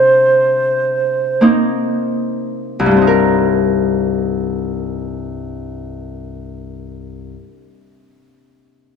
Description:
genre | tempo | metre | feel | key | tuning
celtic folk, Celtic slow air | 38-50 BPM | 3/4 | rubato | C minor | A4 = 440 Hz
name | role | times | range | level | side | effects
bright reedy baroque flute | melody | 0.0-1.4 s | C5 | -12 LUFS | right 2 dB | none
Celtic harp | accompaniment | 0.0-7.6 s | C2 to Bb4 | -16 LUFS | left 2 dB | none
room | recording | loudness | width
wet concert hall reverb, RT60 1.9 s | dark, warm production | -13 LUFS | side -6 dB against mid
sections
0.0-2.9 A section; 2.9-7.6 B section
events
slowing down 0.0-2.9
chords
0.0 Cm7

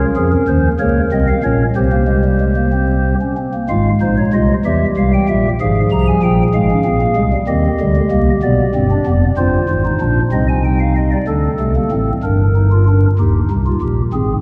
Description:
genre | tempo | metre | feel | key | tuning
classical, baroque-style 4-part fugue for pipe organ | 63 BPM (dotted quarters) | 6/8 | straight | F minor | A4 = 439 Hz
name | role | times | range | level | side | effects
pipe organ, stopped flute | solo | 0.0-14.3 s | Eb1 to Bb5 | -15 LUFS | equal | none
room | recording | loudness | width
wet church reverb, RT60 3.7 s | dark, warm production, vinyl crackle, nothing above 10.8 kHz | -15 LUFS | mono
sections
0.0-3.7 A section; 3.7-11.3 B section; 11.3-14.4 A section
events
none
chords
0.0 Bbm; 0.8 Bbmadd9; 1.8 C5; 3.7 Fm/Ab; 4.7 Edim; 5.6 Fm/Ab; 7.5 Cm; 8.4 Bdim; 9.4 Cm/G; 10.3 Cm; 11.3 D5; 12.2 Gm; 13.2 Eb

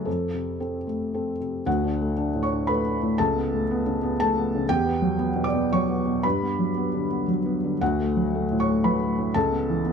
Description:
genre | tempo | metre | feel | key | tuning
neoclassical minimalist piano | 116 BPM | 3/4 | rubato | D major | A4 = 440 Hz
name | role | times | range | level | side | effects
felt-muted upright piano | solo | 0.0-9.9 s | C#2 to D6 | -22 LUFS | equal | none
room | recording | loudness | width
moderate studio reverb, RT60 0.9 s | dark, warm production | -22 LUFS | side -6 dB against mid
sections
0.0-1.7 A section; 1.7-9.9 B section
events
none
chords
0.1 F; 1.7 D; 3.2 Aadd9/C#; 4.7 Emadd9; 6.2 Gmaj7; 7.8 D; 9.3 Aadd9/C#

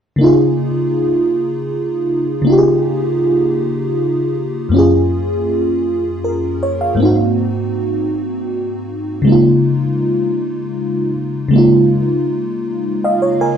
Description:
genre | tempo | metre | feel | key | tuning
R&B | 53 BPM (dotted quarters) | 6/8 | straight | Db major | A4 = 436 Hz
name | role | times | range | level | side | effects
FM electric piano with soft pad layer | solo | 0.2-13.6 s | Gb2 to Ab5 | -13 LUFS | equal | chorus
room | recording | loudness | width
moderate studio ambience, RT60 0.5 s | band playing live in one room | -13 LUFS | side -8 dB against mid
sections
0.2-13.6 A section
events
FM electric piano fill 12.7-13.6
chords
0.2 Db69; 4.7 Gbmaj9; 7.0 Ab7; 9.3 Db69

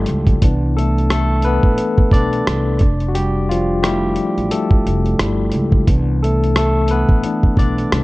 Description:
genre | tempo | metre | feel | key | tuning
lo-fi hip hop | 88 BPM | 4/4 | swing 56% on 16ths | C major | A4 = 439 Hz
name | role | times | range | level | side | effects
barky tine electric piano | accompaniment | 0.0-8.0 s | E3 to D5 | -18 LUFS | left 2 dB | medium stereo tremolo, low-pass filter
upright bass | bass | 0.0-8.0 s | F1 to Db2 | -19 LUFS | right 1 dB | none
dusty soul sampler-style drum kit | drums | 0.1-8.0 s | hi-hat, kick drum, rim click | -15 LUFS | equal | vintage 12-bit sampler grit
room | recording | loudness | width
light reverb | dark, warm production | -14 LUFS | side -20 dB against mid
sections
0.0-8.0 A section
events
tine electric piano solo 0.0-8.0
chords
0.4 Cmaj9; 2.8 Fmaj9; 5.9 Cmaj9

